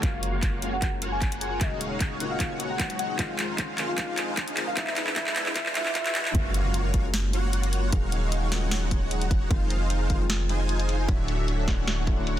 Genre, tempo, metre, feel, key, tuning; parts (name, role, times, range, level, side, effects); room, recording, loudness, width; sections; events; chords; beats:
future bass; 152 BPM; 4/4; half-time; Gb lydian; A4 = 442 Hz
soft octave-layered synth lead; melody; 0.0-6.3 s; Eb5 to Ab5; -34 LUFS; left 1 dB; chorus, phaser, sidechain pumping, ping-pong delay
dark grand piano; accompaniment; 0.0-12.4 s; Db3 to F5; -36 LUFS; left 5 dB; sidechain pumping, ping-pong delay
ethereal airy pad; sustained chords; 0.2-12.4 s; Gb3 to Bb5; -43 LUFS; left 1 dB
supersaw chords; riff; 0.0-12.4 s; Ab3 to Ab5; -32 LUFS; equal; ensemble chorus, sidechain pumping, low-pass filter
warm 808-style bass; bass; 0.0-12.4 s; D1 to Gb1; -28 LUFS; equal; sidechain pumping
electronic kick drum; drums; 0.0-12.2 s; -26 LUFS; equal
trap drum kit; drums; 0.0-12.4 s; handclaps, hi-hat, snare drum; -30 LUFS; equal; soft clipping on snare, low-pass filter on snare, low-pass filter on hats, low-pass filter on room
riser and impact; sound effects; 2.1-7.9 s; -38 LUFS; equal
light reverb; dense, heavily limited modern master, high-pass filter; -24 LUFS; side -12 dB against mid
0.0-6.3 A section; 6.3-12.4 B section
build-up 0.0-6.3; drum fill 0.0-6.3; filter sweep 0.0-6.3; riser 2.1-6.3; impact 6.3-7.9
0.0 Gbmaj7; 1.6 Ebm11; 3.2 Fm7; 4.8 Dmaj9; 6.3 Gbmaj7; 7.9 Ebm11; 9.5 Fm7; 11.1 Dmaj9
| 0.03 0.43 0.82 1.22 | 1.61 2.01 2.40 2.80 | 3.19 3.58 3.98 4.38 | 4.77 5.16 5.56 5.95 | 6.35 6.74 7.14 7.53 | 7.93 8.32 8.72 9.11 | 9.51 9.90 10.30 10.69 | 11.09 11.48 11.88 12.27